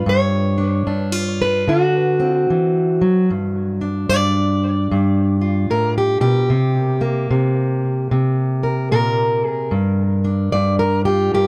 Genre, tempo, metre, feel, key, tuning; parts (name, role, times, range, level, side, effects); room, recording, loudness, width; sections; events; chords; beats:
acoustic country blues, solo or duo; 74 BPM; 4/4; swing 63% on 8ths; A4 = 439 Hz
fingerpicked plugged-in steel-string acoustic guitar; solo; 0.0-11.5 s; G2 to D5; -18 LUFS; equal; analog delay
light reverb; close, detailed microphones; -18 LUFS; mono
0.0-3.3 A section; 3.3-11.5 B section
steel-string acoustic guitar solo 3.3-11.5
0.0 G7; 1.7 D7; 3.3 G7(no3); 6.5 Bbsus2; 9.7 G5
| 0.06 0.87 1.67 2.47 | 3.28 4.08 4.89 5.69 | 6.50 7.30 8.11 8.91 | 9.72 10.53 11.33